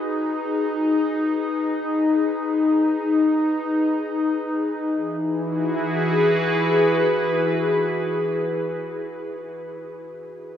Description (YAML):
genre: ambient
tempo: free time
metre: none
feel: none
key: E major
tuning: A4 = 440 Hz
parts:
  - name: evolving wavetable pad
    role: sustained chords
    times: 0.0-9.5 s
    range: E3 to B4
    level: -20 LUFS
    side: left 1 dB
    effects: chorus, built-in reverb
room: wet huge ambient reverb, RT60 8.4 s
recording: cassette tape, small room ambience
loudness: -19 LUFS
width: side -9 dB against mid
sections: 0.0-4.9 A section; 4.9-8.7 B section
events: none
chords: 0.0 G#m; 4.9 Eadd9